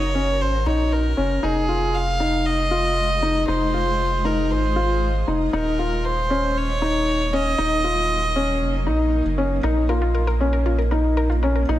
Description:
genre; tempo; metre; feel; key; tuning
piano and strings electronica; 117 BPM; 4/4; straight; unclear; A4 = 441 Hz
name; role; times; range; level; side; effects
warm violin; melody; 0.0-9.1 s; Ab4 to F5; -24 LUFS; right 1 dB; tape echo
granular cloud pad; sustained chords; 0.0-11.8 s; Gb3 to Bb5; -32 LUFS; right 1 dB; built-in reverb
round analog bass; bass; 0.0-11.8 s; Eb1 to Bb1; -23 LUFS; equal; none
felt-muted upright piano; riff; 0.1-11.8 s; Db4 to F4; -23 LUFS; left 2 dB; low-pass filter, tape echo
wide unison pluck; arpeggios; 9.6-11.7 s; F4 to Bb4; -28 LUFS; left 2 dB; tape echo
room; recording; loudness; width
light reverb, studio reverb; none; -18 LUFS; side -13 dB against mid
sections
0.0-11.8 A section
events
fade-in on ambient pad 0.0-11.8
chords
0.0 Gb; 1.4 Fm7; 5.5 Ebm; 9.6 Bbm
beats
0.40 0.92 | 1.43 1.94 2.46 2.97 | 3.48 3.99 4.51 5.02 | 5.53 6.04 6.56 7.07 | 7.58 8.10 8.61 9.12 | 9.63 10.15 10.66 11.17 | 11.69

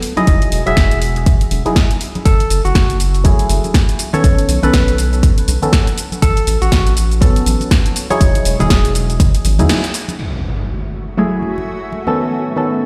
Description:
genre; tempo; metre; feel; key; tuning
deep house; 121 BPM; 4/4; swing 59% on 16ths; F# dorian; A4 = 440 Hz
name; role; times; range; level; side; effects
percussive organ stab; stabs; 0.0-12.9 s; D#3 to A4; -21 LUFS; equal; chorus, phaser, sidechain pumping, tape echo
punchy analog drum machine; drums; 0.0-10.3 s; crash cymbal, hi-hat, shaker, snare drum; -24 LUFS; equal; low-pass filter on hats, low-pass filter on snare, low-pass filter on perc, low-pass filter on cymbals
barky tine electric piano; melody; 0.2-8.9 s; F#4 to E5; -25 LUFS; equal; overdrive, dub echo
congas; percussion; 0.2-12.2 s; none; -28 LUFS; equal; none
round analog bass; bass; 0.3-9.7 s; E1 to E2; -19 LUFS; equal; sidechain pumping
electronic kick drum; drums; 0.3-9.3 s; none; -15 LUFS; equal; none
impact; sound effects; 10.2-12.2 s; none; -27 LUFS; equal; none
granular cloud pad; texture; 10.7-12.9 s; A3 to G#5; -27 LUFS; equal; built-in reverb, sidechain pumping
room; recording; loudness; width
light reverb, digital ambience; played on a big sound system in a bare room, stone room reverb; -14 LUFS; mono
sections
0.0-10.2 A section; 10.2-12.9 B section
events
break 9.7-10.2; band accent 9.7; impact 10.2-12.2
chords
0.3 Emaj9; 2.3 F#m9; 4.2 B9; 6.0 A69; 8.2 Emaj9; 10.2 F#m9; 12.2 B9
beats
| 0.27 0.77 1.26 1.76 | 2.26 2.75 3.25 3.74 | 4.24 4.74 5.23 5.73 | 6.22 6.72 7.21 7.71 | 8.21 8.70 9.20 9.69 | 10.19 10.69 11.18 11.68 | 12.17 12.67

